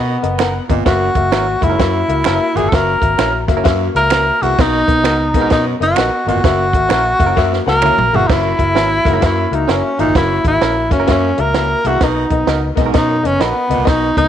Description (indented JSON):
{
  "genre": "uptempo 1960s-style soul",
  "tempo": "129 BPM",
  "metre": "4/4",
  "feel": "swing 64% on 8ths",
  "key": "F# mixolydian",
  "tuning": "A4 = 440 Hz",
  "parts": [
    { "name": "breathy tenor saxophone", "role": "melody", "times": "0.0-14.3 s", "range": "B3 to A#4", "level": "-16 LUFS", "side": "equal", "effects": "none" },
    { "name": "clear upright piano", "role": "accompaniment", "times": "0.0-14.3 s", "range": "B2 to F#5", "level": "-20 LUFS", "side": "left 10 dB", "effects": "none" },
    { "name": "raspy baritone saxophone", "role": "riff", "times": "0.0-14.1 s", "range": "E2 to B2", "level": "-24 LUFS", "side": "right 10 dB", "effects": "none" },
    { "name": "vintage muted fingered electric bass", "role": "bass", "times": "0.0-14.3 s", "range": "F#1 to B2", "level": "-20 LUFS", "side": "equal", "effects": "none" },
    { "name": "compact cocktail drum kit", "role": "drums", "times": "0.2-14.3 s", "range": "crash cymbal, hi-hat, kick drum, snare drum, toms", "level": "-18 LUFS", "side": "right 3 dB", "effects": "none" },
    { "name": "direct-recorded clean electric guitar", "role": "stabs", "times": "0.4-13.5 s", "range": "B3 to A#4", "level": "-24 LUFS", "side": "right 9 dB", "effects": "wide subtle chorus" },
    { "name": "finger snaps", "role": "percussion", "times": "0.4-8.0 s", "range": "none", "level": "-27 LUFS", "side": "right 11 dB", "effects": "none" }
  ],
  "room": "light reverb, studio reverb",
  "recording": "1960s-style stereo with parts hard left and right",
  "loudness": "-12 LUFS",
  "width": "side -10 dB against mid",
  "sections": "0.0-8.3 A section; 8.3-14.3 A section",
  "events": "drum fill 7.4-8.3",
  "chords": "0.0 Bmaj7; 0.9 F#7; 4.6 Bmaj7; 6.4 F#7; 12.0 Bmaj7"
}